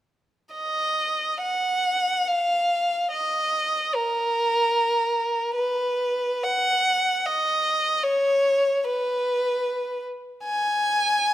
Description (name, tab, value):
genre	classical, free, expressive piece for unaccompanied violin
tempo	63-78 BPM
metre	3/4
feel	rubato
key	Eb minor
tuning	A4 = 439 Hz
part	rich violin	solo	0.5-11.3 s	Bb4 to Ab5	-21 LUFS	equal	none
room	moderate recital hall reverb, RT60 1.6 s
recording	close, detailed microphones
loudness	-21 LUFS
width	side -13 dB against mid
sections	0.5-11.3 A section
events	none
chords	none